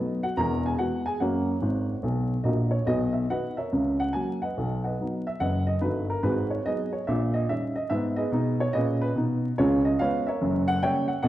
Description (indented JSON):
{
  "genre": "jazz, stride piano",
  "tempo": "144 BPM",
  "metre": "4/4",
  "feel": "swing 66% on 8ths",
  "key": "B major",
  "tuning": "A4 = 440 Hz",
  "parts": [
    { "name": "dark upright piano", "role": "solo", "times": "0.0-11.3 s", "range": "E1 to A#5", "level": "-24 LUFS", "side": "equal", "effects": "none" }
  ],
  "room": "wet recital hall reverb, RT60 1.3 s",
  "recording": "recorded in a church or concert hall, vinyl crackle, nothing above 11.0 kHz",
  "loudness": "-24 LUFS",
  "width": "side -14 dB against mid",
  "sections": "0.0-2.9 A section; 2.9-11.3 B section",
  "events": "upright piano fill 1.6-2.9",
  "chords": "0.4 E; 1.2 F#; 2.9 B; 3.7 F#/C#; 4.5 B; 6.2 G#m7; 7.0 D#7/A#; 7.9 G#m; 9.6 C#7; 10.4 F#7b9"
}